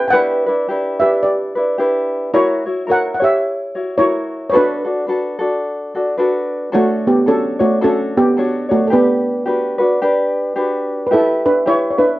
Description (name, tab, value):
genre	Hawaiian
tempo	109 BPM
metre	4/4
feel	swing 59% on 8ths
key	B minor, D major from 6.7 s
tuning	A4 = 440 Hz
part	steel pan	melody	0.0-12.2 s	A3 to G5	-15 LUFS	right 1 dB	none
part	tenor ukulele	accompaniment	0.0-12.2 s	C#4 to E5	-17 LUFS	left 1 dB	none
room	wet studio reverb, RT60 0.5 s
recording	worn, warbling old tape, cassette tape, warbly pitch drift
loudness	-14 LUFS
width	side -17 dB against mid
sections	0.0-6.7 A section; 6.7-12.2 B section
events	none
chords	0.1 Em7; 2.3 F#7; 4.5 Bm7; 6.7 Dmaj7; 8.9 Gmaj7; 11.1 Em